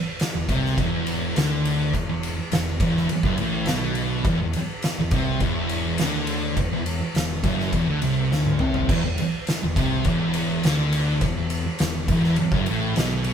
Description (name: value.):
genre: stoner and doom metal.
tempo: 103 BPM.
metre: 4/4.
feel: straight.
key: unclear.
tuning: A4 = 443 Hz.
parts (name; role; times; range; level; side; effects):
oversized low-tuned drum kit; drums; 0.2-13.3 s; crash cymbal, kick drum, ride cymbal, snare drum, toms; -25 LUFS; equal; none.
thick fuzz guitar; riff; 0.3-13.3 s; E2 to D3; -25 LUFS; left 4 dB; distortion.
thick fuzz guitar; riff; 0.3-13.3 s; E2 to D3; -27 LUFS; right 9 dB; distortion.
fuzz picked electric bass; bass; 0.4-13.3 s; E1 to D2; -30 LUFS; equal; overdrive.
room: light reverb.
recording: band playing live in one room.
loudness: -20 LUFS.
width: side -8 dB against mid.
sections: 0.0-8.9 A section; 8.9-13.3 A section.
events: drum fill 8.3-8.9.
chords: 0.0 E5.